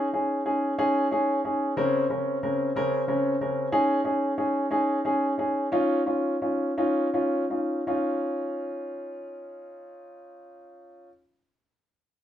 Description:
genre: pop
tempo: 53-62 BPM (dotted quarters)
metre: 6/8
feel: straight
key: Db major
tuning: A4 = 440 Hz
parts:
  - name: warm concert grand piano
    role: solo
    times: 0.0-11.1 s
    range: Db3 to Bb4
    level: -24 LUFS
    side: equal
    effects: none
room: moderate studio reverb, RT60 0.5 s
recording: band playing live in one room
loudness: -24 LUFS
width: side -10 dB against mid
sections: 0.0-7.9 A section; 7.9-12.2 B section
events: slowing down 3.7-7.9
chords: 0.0 Dbsus2; 1.8 Bbmadd9/Db; 3.7 Dbsus2; 5.7 Dbadd9

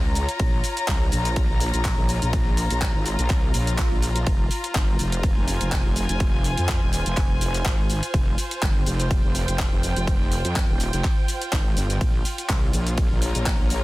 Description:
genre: bass house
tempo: 124 BPM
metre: 4/4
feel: swing 55% on 16ths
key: F minor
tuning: A4 = 440 Hz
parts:
  - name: wobble bass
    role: bass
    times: 0.0-13.8 s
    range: Eb1 to F2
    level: -24 LUFS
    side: equal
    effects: chorus, overdrive, sidechain pumping
  - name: warm studio string section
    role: texture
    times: 0.0-13.8 s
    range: F4 to Bb5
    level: -30 LUFS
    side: left 1 dB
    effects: sidechain pumping
  - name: garage drum kit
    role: drums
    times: 0.2-13.8 s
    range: handclaps, hi-hat, ride cymbal, shaker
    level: -30 LUFS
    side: equal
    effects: overdrive
  - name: electronic kick drum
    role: drums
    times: 0.4-13.6 s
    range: none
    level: -22 LUFS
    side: equal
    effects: overdrive
  - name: swell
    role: sound effects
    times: 3.5-4.3 s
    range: none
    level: -38 LUFS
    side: right 6 dB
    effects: none
room: digital ambience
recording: dense, heavily limited modern master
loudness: -20 LUFS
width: side -18 dB against mid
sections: 0.0-13.8 A section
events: swell 3.5-4.3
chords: 0.0 Bbm; 4.3 Fm; 12.0 Bbm

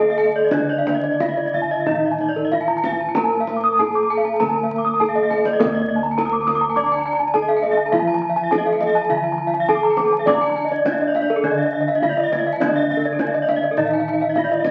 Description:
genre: Balinese gamelan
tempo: 87-103 BPM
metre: 4/4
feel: straight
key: D pelog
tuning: A4 = 440 Hz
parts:
  - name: gamelan-type bronze metallophone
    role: melody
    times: 0.0-14.7 s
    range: Bb3-40c to D5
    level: -24 LUFS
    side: equal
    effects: none
  - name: gamelan-type bronze metallophone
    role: accompaniment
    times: 0.0-14.7 s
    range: D3 to D4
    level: -34 LUFS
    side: equal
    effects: none
  - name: gamelan-type bronze metallophone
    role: arpeggios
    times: 0.0-14.7 s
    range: Bb4-40c to Eb6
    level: -23 LUFS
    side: equal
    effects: none
  - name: gamelan-type bossed gongs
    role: bass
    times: 0.0-14.7 s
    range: D2 to D5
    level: -32 LUFS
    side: equal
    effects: none
  - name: kendang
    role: percussion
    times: 0.0-14.7 s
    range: none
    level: -33 LUFS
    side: equal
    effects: none
  - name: gamelan-type bronze metallophone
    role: arpeggios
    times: 0.1-14.7 s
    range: A4-45c to Eb6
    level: -28 LUFS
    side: equal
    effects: none
room: wet studio reverb, RT60 0.9 s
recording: very old 78 rpm record, vinyl crackle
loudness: -19 LUFS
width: mono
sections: 0.0-5.6 A section; 5.6-14.7 B section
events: drum fill 5.0-5.6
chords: none

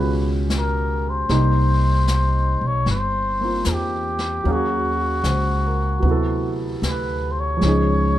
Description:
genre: jazz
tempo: 76 BPM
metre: 4/4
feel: swing 68% on 8ths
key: unclear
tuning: A4 = 441 Hz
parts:
  - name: trumpet with cup mute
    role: melody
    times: 0.0-8.2 s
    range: Gb4 to Db5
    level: -24 LUFS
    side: left 2 dB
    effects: plate reverb
  - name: warm concert grand piano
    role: accompaniment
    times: 0.0-8.2 s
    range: Cb3 to F5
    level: -24 LUFS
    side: right 1 dB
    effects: none
  - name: upright bass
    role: bass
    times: 0.0-8.2 s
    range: G1 to Fb2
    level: -21 LUFS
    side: equal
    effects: none
  - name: vintage brush drum kit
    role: drums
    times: 0.5-8.2 s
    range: brushed snare drum, hi-hat, snare drum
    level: -30 LUFS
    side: left 2 dB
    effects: none
room: light reverb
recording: dark, warm production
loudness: -18 LUFS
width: side -13 dB against mid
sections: 0.0-8.2 A section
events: none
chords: 0.0 Db7#11; 1.3 Cm7; 4.5 Ebm11; 6.0 D13; 7.6 Dbadd9

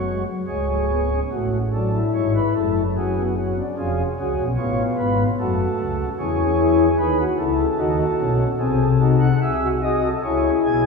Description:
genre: classical, baroque-style 4-part fugue for pipe organ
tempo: 74 BPM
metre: 3/4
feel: straight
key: F# minor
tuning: A4 = 440 Hz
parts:
  - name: pipe organ, flutes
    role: solo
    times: 0.0-10.9 s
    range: C#1 to G#5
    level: -18 LUFS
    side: left 2 dB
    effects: none
room: wet church reverb, RT60 2.8 s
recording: none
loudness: -18 LUFS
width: side -4 dB against mid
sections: 0.0-1.3 A section; 1.3-10.9 B section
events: none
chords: 0.5 C#5; 1.3 F#m/A; 3.0 G#m7b5/F#; 3.8 Fdim; 5.4 F#m; 6.2 C#m/E; 7.8 D#m7b5; 8.6 Cdim7; 10.3 C#m

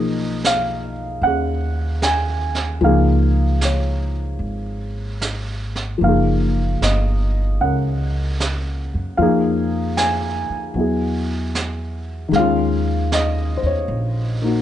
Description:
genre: jazz ballad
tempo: 76 BPM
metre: 4/4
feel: swing 68% on 8ths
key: Eb minor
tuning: A4 = 437 Hz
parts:
  - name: dark grand piano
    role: accompaniment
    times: 0.0-14.6 s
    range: Eb3 to G#5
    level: -20 LUFS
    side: left 1 dB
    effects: none
  - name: upright bass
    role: bass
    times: 0.0-14.6 s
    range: Gb1 to Gb2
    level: -21 LUFS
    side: right 1 dB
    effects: none
  - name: jazz brush drum kit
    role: drums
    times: 0.4-14.6 s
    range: brushed snare drum, hi-hat, snare drum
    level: -26 LUFS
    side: right 4 dB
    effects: none
room: little or no reverb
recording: nothing above 10.3 kHz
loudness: -17 LUFS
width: side -11 dB against mid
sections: 0.0-14.6 A section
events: none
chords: 0.0 B69; 2.8 Db69; 6.0 Gbmaj9; 9.2 Bb7sus4/F; 10.7 E; 12.3 Eb7sus2

